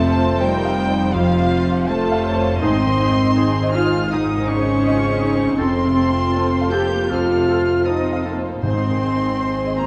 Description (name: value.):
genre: cinematic.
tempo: 80 BPM.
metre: 4/4.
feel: rubato.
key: unclear.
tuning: A4 = 442 Hz.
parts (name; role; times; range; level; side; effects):
warm chamber violin section; melody; 0.0-9.9 s; F5 to G6; -31 LUFS; equal; none.
clear oboe; second line; 0.0-9.9 s; Ab4 to C5; -36 LUFS; equal; none.
mellow clarinet; second line; 0.0-9.9 s; C4 to Eb4; -32 LUFS; equal; none.
mellow hollow concert flute; second line; 0.0-9.9 s; F5 to G6; -30 LUFS; equal; none.
warm chamber violin section; second line; 0.0-9.9 s; Ab4 to Eb5; -30 LUFS; equal; none.
dark symphonic viola section; accompaniment; 0.0-9.9 s; C3 to Ab4; -29 LUFS; equal; none.
warm concert grand piano; accompaniment; 0.0-9.9 s; F2 to F5; -26 LUFS; equal; none.
mellow French horn section; sustained chords; 0.0-9.9 s; Db3 to G4; -24 LUFS; equal; none.
rich symphonic double bass section; bass; 0.0-9.9 s; F1 to Ab1; -27 LUFS; equal; none.
warm symphonic cello section; bass; 0.0-9.9 s; F3 to G4; -27 LUFS; equal; none.
timpani; percussion; 8.6-9.8 s; Ab2; -29 LUFS; equal; none.
room: wet scoring stage reverb, RT60 2.0 s.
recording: dark, warm production.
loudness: -18 LUFS.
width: mono.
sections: 0.0-9.9 A section.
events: none.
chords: 0.0 F; 2.6 Ab; 5.6 F; 8.6 Ab.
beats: 0.40 1.14 1.88 | 2.61 3.37 4.11 4.84 | 5.57 6.33 7.09 7.85 | 8.63 9.40.